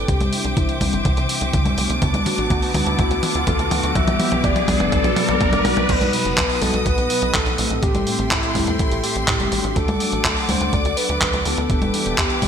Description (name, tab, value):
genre	italo disco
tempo	124 BPM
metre	4/4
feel	straight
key	unclear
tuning	A4 = 440 Hz
part	soft octave-layered synth lead	melody	0.0-12.5 s	E4 to E5	-25 LUFS	left 1 dB	chorus, digital delay
part	warm studio string section	sustained chords	0.0-12.5 s	A4 to D#6	-26 LUFS	left 1 dB	none
part	mellow synth brass	stabs	0.0-12.5 s	A2 to A4	-26 LUFS	left 1 dB	chorus, cassette tape
part	tight sequencer bass	bass	0.0-12.5 s	E1 to A2	-25 LUFS	equal	none
part	riser	sound effects	0.7-5.9 s	none	-27 LUFS	right 1 dB	none
part	dusty soul sampler-style drum kit	drums	0.1-12.5 s	congas, crash cymbal, handclaps, hi-hat, toms	-22 LUFS	left 1 dB	gated reverb
part	electronic kick drum	drums	0.1-12.5 s	none	-23 LUFS	right 1 dB	none
room	moderate lush hall reverb, RT60 1.9 s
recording	bright 1980s-style digital production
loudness	-17 LUFS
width	side -8 dB against mid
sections	0.0-5.9 A section; 5.9-12.5 B section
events	drum fill 0.0-5.9; filter sweep on analog polysynth 0.0-5.9; filter sweep on soft synth lead 0.0-5.9; riser 0.7-5.9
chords	0.1 Cadd9; 2.0 D6; 4.0 Bm; 5.9 B; 7.8 Am7; 9.8 D; 11.7 Em7